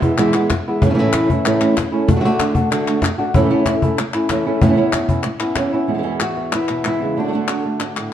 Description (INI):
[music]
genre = flamenco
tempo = 189 BPM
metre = 4/4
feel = straight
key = A major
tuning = A4 = 440 Hz
[part]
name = flamenco guitar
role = melody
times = 0.0-8.1 s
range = E2 to F#4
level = -18 LUFS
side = equal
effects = slapback echo
[part]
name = flamenco guitar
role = stabs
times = 0.0-8.1 s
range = E2 to F#4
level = -22 LUFS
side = right 4 dB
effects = slapback echo
[part]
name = cajon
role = percussion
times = 0.0-5.7 s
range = none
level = -20 LUFS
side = left 2 dB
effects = none
[part]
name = palmas hand claps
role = percussion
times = 0.2-8.1 s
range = none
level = -25 LUFS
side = left 5 dB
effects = none
[sound]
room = wet stone room reverb, RT60 1.2 s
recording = dark, warm production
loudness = -15 LUFS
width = side -10 dB against mid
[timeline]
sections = 0.0-5.9 A section; 5.9-8.1 B section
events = none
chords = 0.0 E; 0.8 A; 2.1 D; 3.3 A; 4.6 Aadd9; 5.9 E; 7.2 D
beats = 0.18 0.50 | 0.81 1.13 1.45 1.76 | 2.08 2.40 2.71 3.03 | 3.35 3.67 3.98 4.30 | 4.62 4.93 5.25 5.57 | 5.89 6.21 6.53 6.84 | 7.17 7.48 7.80 8.12